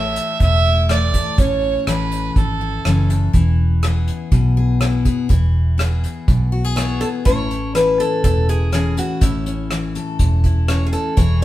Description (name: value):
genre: honky-tonk and classic country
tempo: 123 BPM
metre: 4/4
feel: straight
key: A major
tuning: A4 = 440 Hz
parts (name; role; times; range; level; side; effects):
- clear fiddle; second line; 0.0-3.1 s; A4 to E5; -21 LUFS; right 4 dB; none
- picked steel-string acoustic guitar; accompaniment; 0.0-11.4 s; A2 to A4; -22 LUFS; left 4 dB; none
- vintage muted fingered electric bass; bass; 0.0-11.4 s; E1 to B1; -18 LUFS; equal; none
- unplugged drum kit; drums; 0.2-11.4 s; hi-hat, kick drum, rim click; -20 LUFS; equal; none
- picked acoustic archtop guitar; melody; 6.8-11.4 s; E4 to C#5; -21 LUFS; left 1 dB; none
room: moderate stone room reverb, RT60 1.1 s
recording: band playing live in one room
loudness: -15 LUFS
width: side -14 dB against mid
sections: 0.0-7.3 A section; 7.3-11.4 B section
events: fiddle solo 0.0-7.3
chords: 0.0 A; 3.3 E; 7.3 A